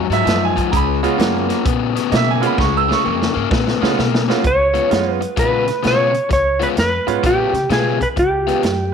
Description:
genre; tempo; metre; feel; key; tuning
electric blues shuffle; 129 BPM; 4/4; swing 66% on 8ths; Db mixolydian; A4 = 439 Hz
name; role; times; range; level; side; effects
bright grand piano; accompaniment; 0.0-7.2 s; Ab3 to Fb6; -20 LUFS; right 12 dB; none
overdriven electric guitar; riff; 0.0-8.7 s; Ab2 to F4; -20 LUFS; left 13 dB; none
upright bass; bass; 0.1-8.9 s; Db2 to Db3; -23 LUFS; right 1 dB; none
vintage drum kit; drums; 0.1-8.8 s; hi-hat, kick drum, snare drum; -21 LUFS; right 1 dB; none
clean lap steel guitar; melody; 4.5-8.9 s; G4 to Db5; -16 LUFS; equal; none
room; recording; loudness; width
light reverb; 1960s-style stereo with parts hard left and right; -14 LUFS; side -7 dB against mid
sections
0.0-4.4 A section; 4.4-8.9 B section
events
drum fill 2.6-4.4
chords
0.0 Ab7(no3); 0.7 Db7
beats
0.26 | 0.73 1.19 1.66 2.12 | 2.59 3.05 3.52 3.98 | 4.45 4.91 5.38 5.84 | 6.31 6.77 7.24 7.70 | 8.17 8.63

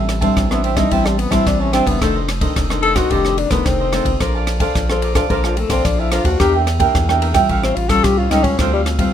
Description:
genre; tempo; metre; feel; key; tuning
samba and choro; 110 BPM; 4/4; straight; A minor; A4 = 439 Hz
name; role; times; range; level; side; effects
cavaquinho; accompaniment; 0.0-9.1 s; D4 to A5; -21 LUFS; right 7 dB; none
nylon-string guitar; accompaniment; 0.0-9.1 s; F2 to C5; -21 LUFS; left 3 dB; none
saturated sub bass; bass; 0.0-9.1 s; F1 to E2; -21 LUFS; equal; none
compact cocktail drum kit; drums; 0.1-9.1 s; kick drum, ride cymbal, rim click; -20 LUFS; equal; none
breathy tenor saxophone; second line; 0.5-8.8 s; F3 to A4; -19 LUFS; left 4 dB; none
room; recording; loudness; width
light reverb; close, detailed microphones; -14 LUFS; side -9 dB against mid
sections
0.0-9.1 A section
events
tenor saxophone solo 0.0-9.1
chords
0.0 Am7; 2.0 F13; 4.2 Bbmaj9; 6.4 Em7b5; 7.5 A7alt; 8.6 Dm7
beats
0.37 0.92 1.46 | 2.01 2.56 3.11 3.66 | 4.21 4.75 5.30 5.85 | 6.40 6.95 7.49 8.04 | 8.59

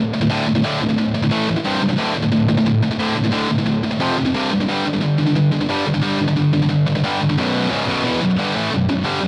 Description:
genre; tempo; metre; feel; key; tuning
metal; 178 BPM; 4/4; straight; B phrygian; A4 = 440 Hz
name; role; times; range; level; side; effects
heavy high-gain guitar; solo; 0.0-9.3 s; B1 to A3; -18 LUFS; equal; distortion, tape echo
room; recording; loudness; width
little or no reverb; dry, close 1970s-style studio recording; -18 LUFS; mono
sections
0.0-7.4 A section; 7.4-9.3 B section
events
none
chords
0.0 D5; 1.3 A5; 1.6 C5; 2.0 D5; 4.0 F5; 4.3 C5; 4.7 G5; 7.4 Bm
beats
0.30 | 0.64 0.97 1.31 1.65 | 1.99 2.33 2.66 3.00 | 3.34 3.68 4.01 4.35 | 4.69 5.03 5.36 5.70 | 6.04 6.37 6.71 7.04 | 7.38 7.72 8.05 8.39 | 8.72 9.06

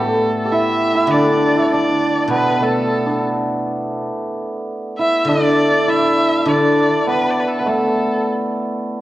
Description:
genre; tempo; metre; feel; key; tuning
chinese traditional, Chinese chamber ensemble; 100 BPM; 4/4; straight; D zhi mode; A4 = 440 Hz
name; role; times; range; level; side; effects
clear erhu; melody; 0.0-8.3 s; A4 to E5; -20 LUFS; equal; none
hammered dulcimer; second line; 0.0-9.0 s; A3 to G4; -17 LUFS; right 1 dB; none
guzheng; accompaniment; 0.0-8.3 s; A2 to D4; -21 LUFS; left 2 dB; none
room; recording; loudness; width
wet scoring stage reverb, RT60 1.9 s; worn, warbling old tape, cassette tape, warbly pitch drift; -15 LUFS; side -15 dB against mid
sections
0.0-9.0 A section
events
none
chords
none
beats
0.52 1.11 1.71 | 2.31 2.91 3.50 4.09 | 4.68 5.28 5.88 6.48 | 7.08 7.68 8.29 8.90

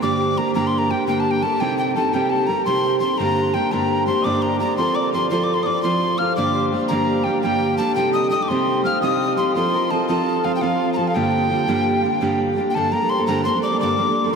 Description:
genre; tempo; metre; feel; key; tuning
celtic folk; 113 BPM (dotted quarters); 9/8; straight; G minor; A4 = 439 Hz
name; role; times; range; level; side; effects
mellow hollow tin whistle; melody; 0.0-14.3 s; F5 to F6; -22 LUFS; left 1 dB; none
concert harp; second line; 0.0-14.4 s; F4 to F5; -26 LUFS; left 3 dB; none
fingerpicked steel-string acoustic guitar; accompaniment; 0.0-14.4 s; G2 to A4; -20 LUFS; right 2 dB; none
room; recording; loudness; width
wet huge ambient reverb, RT60 8.4 s; dreamy mix soaked in reverb; -17 LUFS; side -6 dB against mid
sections
0.0-12.8 A section; 12.8-14.4 B section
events
none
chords
0.0 Gm; 1.6 Cm; 3.2 Gm; 4.8 F; 6.4 Gm; 8.0 Cm; 9.6 F; 11.2 Gm; 12.8 Gmadd9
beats
| 0.02 0.55 1.08 | 1.61 2.14 2.67 | 3.20 3.73 4.26 | 4.79 5.32 5.85 | 6.38 6.91 7.44 | 7.97 8.50 9.03 | 9.56 10.09 10.62 | 11.16 11.69 12.22 | 12.75 13.28 13.81 | 14.35

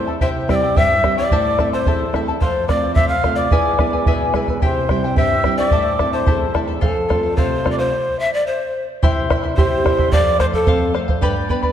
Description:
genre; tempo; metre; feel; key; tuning
andean folk, Andean ensemble; 109 BPM; 2/4; straight; unclear; A4 = 440 Hz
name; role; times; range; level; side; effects
breathy bright large pan pipes; melody; 0.0-10.9 s; A4 to F5; -20 LUFS; left 2 dB; none
breathy hollow quena; second line; 0.0-10.9 s; A5 to F6; -26 LUFS; right 4 dB; none
charango; accompaniment; 0.0-11.7 s; E4 to C6; -23 LUFS; left 4 dB; none
nylon-string guitar; accompaniment; 0.0-11.7 s; E2 to G4; -23 LUFS; right 3 dB; none
bombo; percussion; 0.2-11.7 s; none; -19 LUFS; right 1 dB; none
room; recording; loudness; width
wet concert hall reverb, RT60 1.8 s; dark, warm production; -15 LUFS; side -10 dB against mid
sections
0.2-9.0 A section; 9.0-11.7 B section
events
stop 7.9-9.0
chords
0.2 C; 1.3 Am; 2.4 F; 3.5 E; 4.6 C; 5.7 Am; 6.8 F; 7.9 N.C.; 9.0 C; 10.1 F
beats
| 0.21 0.76 | 1.32 1.87 | 2.42 2.97 | 3.52 4.07 | 4.62 5.17 | 5.72 6.28 | 6.83 7.38 | 7.93 8.48 | 9.03 9.58 | 10.12 10.67 | 11.22

